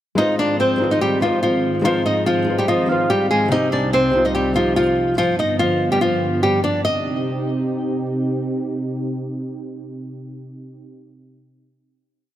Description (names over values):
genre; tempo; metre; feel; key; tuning
hip hop, drill; 144 BPM; 4/4; half-time; C harmonic minor; A4 = 440 Hz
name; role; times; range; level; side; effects
flamenco guitar; melody; 0.2-8.1 s; F3 to Eb5; -18 LUFS; equal; none
felt-muted upright piano; accompaniment; 0.2-5.2 s; C3 to C5; -23 LUFS; left 2 dB; none
warm analog pad; sustained chords; 0.3-10.9 s; C2 to G4; -24 LUFS; right 1 dB; chorus
soft octave-layered synth lead; second line; 2.7-3.1 s; Eb5 to F5; -27 LUFS; right 4 dB; chorus, tape echo
room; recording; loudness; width
light reverb, studio ambience; none; -17 LUFS; side -12 dB against mid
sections
0.2-6.8 breakdown; 6.8-10.2 final chord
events
none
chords
0.2 Ab6; 3.5 Cm; 5.2 G7; 6.8 Cm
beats
| 0.18 0.60 1.01 1.43 | 1.85 2.26 2.68 3.10 | 3.51 3.93 4.35 4.76 | 5.18 5.60 6.01 6.43 | 6.85 7.26 7.68 8.10 | 8.51 8.93 9.35 9.76